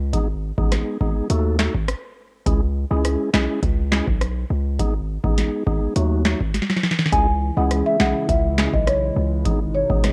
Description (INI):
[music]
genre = dancehall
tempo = 103 BPM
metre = 4/4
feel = straight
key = C# minor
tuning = A4 = 440 Hz
[part]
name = hard-hitting 808-style bass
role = bass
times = 0.0-10.1 s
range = G#1 to D#2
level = -25 LUFS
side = equal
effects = none
[part]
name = percussive tonewheel organ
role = accompaniment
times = 0.1-10.1 s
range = F#3 to A4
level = -28 LUFS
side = equal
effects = fast rotary speaker, sidechain pumping, cassette tape
[part]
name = booming analog drum machine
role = drums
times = 0.1-10.1 s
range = handclaps, hi-hat, kick drum, rim click, snare drum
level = -23 LUFS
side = equal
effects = overdrive
[part]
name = marimba with soft mallets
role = melody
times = 7.1-9.9 s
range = C#5 to G#5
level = -25 LUFS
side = equal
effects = cassette tape, analog delay
[part]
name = hollow soft pad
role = sustained chords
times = 7.1-10.1 s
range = B2 to E4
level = -31 LUFS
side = equal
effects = chorus, sidechain pumping, cassette tape
[sound]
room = light reverb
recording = home recording on cassette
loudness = -21 LUFS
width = mono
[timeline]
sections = 0.0-7.1 A section; 7.1-10.1 B section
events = drum fill 6.5-7.1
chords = 0.1 G#m; 1.3 D#dim; 2.5 C#m; 4.8 G#m; 6.0 D#dim; 7.1 C#m; 9.5 G#m